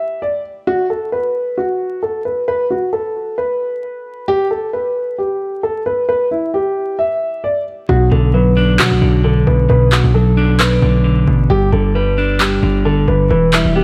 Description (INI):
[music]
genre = hip hop, trap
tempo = 133 BPM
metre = 4/4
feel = half-time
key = B minor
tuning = A4 = 437 Hz
[part]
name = dark concert grand piano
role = melody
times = 0.0-13.8 s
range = E4 to E5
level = -20 LUFS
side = equal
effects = low-pass filter
[part]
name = clean electric guitar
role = accompaniment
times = 7.9-13.8 s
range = G2 to D4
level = -16 LUFS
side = equal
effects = low-pass filter
[part]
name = distorted 808-style bass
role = bass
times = 7.9-13.8 s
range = E1 to F#3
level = -19 LUFS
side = equal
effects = distortion
[part]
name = electronic handclaps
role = drums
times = 8.8-13.6 s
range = none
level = -19 LUFS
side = equal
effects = overdrive
[sound]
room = light reverb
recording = vinyl crackle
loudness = -15 LUFS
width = mono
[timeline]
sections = 0.0-13.8 A section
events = hi-hats muted 7.9-13.8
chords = 0.0 N.C.; 7.9 Bm; 11.5 G; 13.3 Em